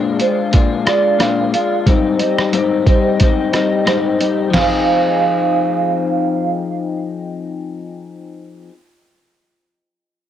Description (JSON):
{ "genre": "indie pop, bedroom pop", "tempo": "90 BPM", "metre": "4/4", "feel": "swing 55% on 16ths", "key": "F dorian", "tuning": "A4 = 439 Hz", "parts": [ { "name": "electric guitar through a small old amp", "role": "accompaniment", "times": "0.0-8.7 s", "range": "Ab2 to Ab4", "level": "-17 LUFS", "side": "left 5 dB", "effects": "analog chorus, warbly pitch drift, cassette tape" }, { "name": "vibraphone with soft mallets", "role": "second line", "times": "0.2-6.5 s", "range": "C5 to F5", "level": "-19 LUFS", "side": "right 8 dB", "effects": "ensemble chorus, cassette tape, tape echo" }, { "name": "lo-fi sampler-style drum kit", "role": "drums", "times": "0.2-4.7 s", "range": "crash cymbal, hi-hat, kick drum, rim click, snare drum, toms", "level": "-16 LUFS", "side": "right 1 dB", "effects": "cassette tape" } ], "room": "light reverb, digital ambience", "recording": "home recording on cassette", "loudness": "-13 LUFS", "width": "side -10 dB against mid", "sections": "0.0-4.5 A section; 4.5-7.2 B section", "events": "none", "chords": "0.0 Bb7; 1.9 Abmaj7; 4.5 Fm7" }